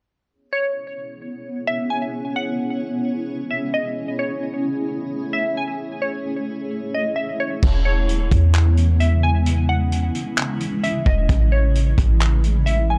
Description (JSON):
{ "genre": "hip hop, atmospheric cloud-rap", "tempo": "131 BPM", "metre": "4/4", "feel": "half-time", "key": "E major", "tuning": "A4 = 440 Hz", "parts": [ { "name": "granular cloud pad", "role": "sustained chords", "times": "1.1-13.0 s", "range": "C#3 to C#5", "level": "-28 LUFS", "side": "equal", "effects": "built-in reverb, sidechain pumping" }, { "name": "glassy wavetable pluck", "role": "melody", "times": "0.5-13.0 s", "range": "C#5 to G#5", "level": "-28 LUFS", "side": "equal", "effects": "chorus, low-pass filter, tape echo" }, { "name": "clean 808-style bass", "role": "bass", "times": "7.6-13.0 s", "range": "D#1 to E2", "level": "-19 LUFS", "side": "equal", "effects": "none" }, { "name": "vintage drum kit", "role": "drums", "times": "7.6-12.8 s", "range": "crash cymbal, handclaps, hi-hat, kick drum", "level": "-24 LUFS", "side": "equal", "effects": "vintage 12-bit sampler grit" } ], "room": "studio reverb", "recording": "dark, warm production", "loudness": "-21 LUFS", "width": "mono", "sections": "0.3-7.6 A section; 7.6-13.0 B section", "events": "none", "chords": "0.3 E6; 4.0 Amaj7; 7.6 E6; 11.3 Amaj7" }